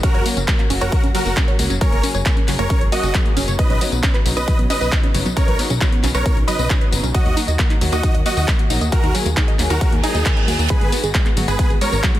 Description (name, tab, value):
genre	uplifting trance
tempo	135 BPM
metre	4/4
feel	straight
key	unclear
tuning	A4 = 440 Hz
part	big supersaw lead	melody	0.0-12.0 s	D#4 to D#5	-24 LUFS	right 1 dB	sidechain pumping, digital delay
part	warm studio string section	sustained chords	0.0-12.2 s	C#3 to G#4	-26 LUFS	left 1 dB	sidechain pumping
part	wide unison pluck	arpeggios	0.0-12.2 s	F#3 to D#5	-26 LUFS	right 2 dB	sidechain pumping, digital delay
part	electronic kick drum	drums	0.0-12.1 s	none	-18 LUFS	equal	none
part	punchy analog drum machine	drums	0.0-12.2 s	handclaps, hi-hat, tambourine	-24 LUFS	left 2 dB	sidechain pumping on hats, sidechain pumping on cymbals, sidechain pumping on perc
part	plucky analog bass	bass	0.1-12.0 s	F#1 to D#2	-21 LUFS	equal	sidechain pumping
part	reverse cymbal	sound effects	10.0-10.7 s	none	-27 LUFS	right 5 dB	none
room	digital ambience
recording	dense, heavily limited modern master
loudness	-15 LUFS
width	side -14 dB against mid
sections	0.0-12.2 A section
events	reverse cymbal 10.0-10.7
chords	0.0 F#; 3.6 Badd9; 7.1 D#m; 10.7 G#m7